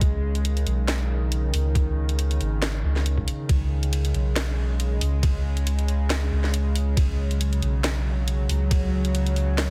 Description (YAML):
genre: deep dubstep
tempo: 138 BPM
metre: 4/4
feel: swing 55% on 16ths, half-time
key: unclear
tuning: A4 = 441 Hz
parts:
  - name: bowed-like drone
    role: sustained chords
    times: 0.0-9.7 s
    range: C#3 to G#3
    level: -33 LUFS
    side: equal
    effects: built-in reverb
  - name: soft dub sub bass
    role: bass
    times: 0.0-9.7 s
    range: G#1 to C#2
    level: -25 LUFS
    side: equal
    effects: tube saturation
  - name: electronic kick drum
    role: drums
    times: 0.0-8.8 s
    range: none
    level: -26 LUFS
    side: equal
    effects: studio reverb
  - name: garage drum kit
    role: drums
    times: 0.0-9.7 s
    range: hi-hat, ride cymbal, snare drum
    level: -33 LUFS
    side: equal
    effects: studio reverb
room: light reverb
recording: heavily compressed radio sound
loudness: -24 LUFS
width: mono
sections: 0.0-9.7 A section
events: none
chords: 0.0 C#5